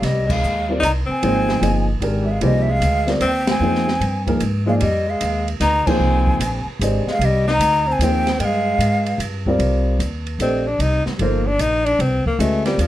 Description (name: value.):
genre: modal jazz.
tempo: 150 BPM.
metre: 3/4.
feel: swing 66% on 8ths.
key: F dorian, C dorian from 9.6 s.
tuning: A4 = 437 Hz.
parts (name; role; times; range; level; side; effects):
breathy concert flute; melody; 0.0-9.2 s; Eb5 to Bb5; -21 LUFS; equal; none.
breathy tenor saxophone; second line; 0.0-12.9 s; F3 to Eb4; -22 LUFS; left 2 dB; none.
upright bass; bass; 0.0-12.9 s; G1 to Ab2; -21 LUFS; equal; none.
open jazz drum kit; drums; 0.0-12.9 s; crash cymbal, hi-hat, kick drum, ride cymbal, snare drum; -27 LUFS; right 1 dB; none.
dark baby grand piano; accompaniment; 0.7-12.9 s; Eb3 to Eb5; -21 LUFS; equal; none.
room: moderate club ambience, RT60 0.5 s.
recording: dark, warm production.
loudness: -16 LUFS.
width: side -14 dB against mid.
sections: 0.0-9.6 A section; 9.6-12.9 B section.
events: band accent 0.2, 3.4, 5.8; tenor saxophone solo 9.6-12.9.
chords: 0.0 Fm9; 8.4 G5; 9.6 Cm11.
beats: | 0.03 0.43 0.82 | 1.22 1.62 2.02 | 2.42 2.82 3.22 | 3.62 4.01 4.41 | 4.81 5.21 5.61 | 6.01 6.41 6.81 | 7.21 7.61 8.00 | 8.40 8.80 9.20 | 9.60 10.00 10.40 | 10.79 11.19 11.59 | 11.99 12.39 12.79.